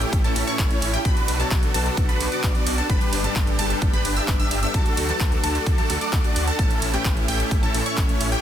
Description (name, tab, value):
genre	EDM, festival progressive house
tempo	130 BPM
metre	4/4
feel	straight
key	D major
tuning	A4 = 445 Hz
part	clear grand piano	accompaniment	0.0-8.2 s	G2 to D5	-30 LUFS	left 3 dB	sidechain pumping, digital delay
part	lush unison pad	sustained chords	0.0-8.4 s	G3 to A5	-33 LUFS	equal	chorus, phaser, sidechain pumping
part	wide unison pluck	arpeggios	0.0-8.4 s	G5 to E6	-29 LUFS	right 1 dB	phaser, sidechain pumping, digital delay
part	supersaw chords	riff	0.0-8.4 s	C#4 to E5	-27 LUFS	right 1 dB	lush chorus, sidechain pumping, digital delay
part	wide detuned saw bass	bass	0.0-8.4 s	G1 to D2	-27 LUFS	equal	chorus, sidechain pumping
part	big-room dance drum kit	drums	0.0-8.4 s	handclaps, hi-hat, ride cymbal	-29 LUFS	right 2 dB	none
part	electronic kick drum	drums	0.1-8.1 s	none	-22 LUFS	equal	none
room	light reverb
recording	dense, heavily limited modern master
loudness	-19 LUFS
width	side -10 dB against mid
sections	0.0-8.4 A section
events	none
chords	0.0 A; 1.1 Bm; 2.9 G; 4.7 D; 6.6 A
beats	0.13 0.59 | 1.05 1.51 1.97 2.44 | 2.90 3.36 3.82 4.28 | 4.74 5.21 5.67 6.13 | 6.59 7.05 7.51 7.97